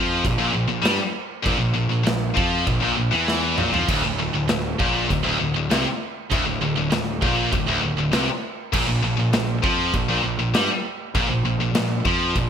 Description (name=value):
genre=heavy metal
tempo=99 BPM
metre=4/4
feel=straight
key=unclear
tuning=A4 = 440 Hz
part: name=heavy high-gain guitar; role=riff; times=0.0-12.5 s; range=D2 to G3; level=-24 LUFS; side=left 9 dB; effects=distortion
part: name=high-gain distorted guitar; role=riff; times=0.0-12.5 s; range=D2 to G3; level=-24 LUFS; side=right 7 dB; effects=distortion
part: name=fuzz picked electric bass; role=bass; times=0.0-12.5 s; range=D1 to G2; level=-27 LUFS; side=equal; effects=overdrive
part: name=big rock drum kit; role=drums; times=0.2-12.5 s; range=china cymbal, crash cymbal, kick drum, snare drum, toms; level=-26 LUFS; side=equal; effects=gated reverb
room=light reverb, small room reverb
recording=bright 1980s-style digital production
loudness=-19 LUFS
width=side -8 dB against mid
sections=0.0-12.5 A section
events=drum fill 3.3-3.9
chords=0.0 Bb5; 3.9 Bbadd9/D; 8.7 Bb5